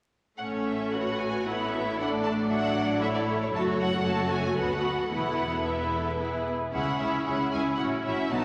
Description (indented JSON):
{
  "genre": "quick classical-period movement for symphony orchestra",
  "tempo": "113 BPM",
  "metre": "3/4",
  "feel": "rubato",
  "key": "A major",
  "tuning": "A4 = 440 Hz",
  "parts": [
    { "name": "rich studio violin section", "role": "melody", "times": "0.4-8.4 s", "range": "C#5 to A5", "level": "-37 LUFS", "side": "equal", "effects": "none" },
    { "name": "clear studio violin section", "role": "second line", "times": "0.4-8.4 s", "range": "F#4 to F#5", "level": "-36 LUFS", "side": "equal", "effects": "none" },
    { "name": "clear studio viola section", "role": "accompaniment", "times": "0.4-8.4 s", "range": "F#3 to F#4", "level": "-30 LUFS", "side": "equal", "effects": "none" },
    { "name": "bright studio cello section", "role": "bass", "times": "0.4-8.4 s", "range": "C#2 to B2", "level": "-38 LUFS", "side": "equal", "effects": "none" },
    { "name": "rich studio double bass section", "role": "bass", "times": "0.4-8.4 s", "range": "E1 to D2", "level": "-40 LUFS", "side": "equal", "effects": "none" }
  ],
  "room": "wet concert hall reverb, RT60 2.2 s",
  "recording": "vinyl crackle",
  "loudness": "-28 LUFS",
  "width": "mono",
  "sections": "0.4-8.4 A section",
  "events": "none",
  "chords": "0.4 A; 2.0 D/A; 3.0 A; 3.5 F#m; 4.6 Bm7/D; 5.1 Esus4; 6.7 C#m; 7.8 F#m7"
}